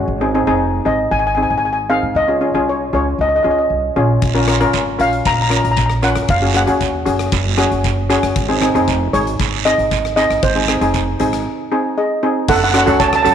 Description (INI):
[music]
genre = calypso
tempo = 116 BPM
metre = 4/4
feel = straight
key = unclear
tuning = A4 = 442 Hz
[part]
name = steel pan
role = accompaniment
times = 0.0-13.3 s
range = Ab3 to Bb4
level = -18 LUFS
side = left 1 dB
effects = none
[part]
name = upright bass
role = bass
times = 0.0-13.3 s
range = F1 to Ab2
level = -21 LUFS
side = right 2 dB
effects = none
[part]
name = steel pan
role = melody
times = 0.9-13.3 s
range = Ab4 to Bb5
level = -17 LUFS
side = equal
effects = none
[part]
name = huge arena drum kit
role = drums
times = 4.2-13.3 s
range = crash cymbal, hi-hat, kick drum, rim click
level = -23 LUFS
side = left 3 dB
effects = none
[part]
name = guiro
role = percussion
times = 4.2-13.1 s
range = none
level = -24 LUFS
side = right 15 dB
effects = none
[sound]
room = moderate echo chamber reverb, RT60 2.3 s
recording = 1960s-style stereo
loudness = -13 LUFS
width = side -8 dB against mid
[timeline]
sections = 0.0-12.5 A section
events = break 11.5-12.5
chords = 0.1 Ab; 2.2 Dbadd9; 4.2 Bbm; 6.3 Gbsus2; 8.4 Ab; 12.5 Gbm